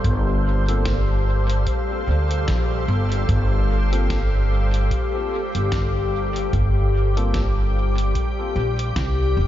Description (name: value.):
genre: ambient dub.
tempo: 74 BPM.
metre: 4/4.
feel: swing 58% on 16ths.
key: G minor.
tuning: A4 = 440 Hz.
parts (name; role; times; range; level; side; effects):
soft additive organ-like pad; sustained chords; 0.0-9.5 s; G3 to F5; -25 LUFS; left 2 dB; ensemble chorus, built-in reverb.
upright bass; bass; 0.0-9.5 s; F1 to D2; -20 LUFS; equal; none.
electronic kick drum; drums; 0.0-9.2 s; none; -28 LUFS; equal; none.
lo-fi sampler-style drum kit; drums; 0.0-9.2 s; hi-hat, snare drum; -34 LUFS; equal; small room reverb, dub echo.
bright tine electric piano; stabs; 0.7-7.4 s; Bb3 to A4; -34 LUFS; left 2 dB; lush chorus, dub echo.
room: light reverb.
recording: nothing above 7.5 kHz.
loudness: -18 LUFS.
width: side -12 dB against mid.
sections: 0.0-9.5 A section.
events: none.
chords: 0.0 Gm11.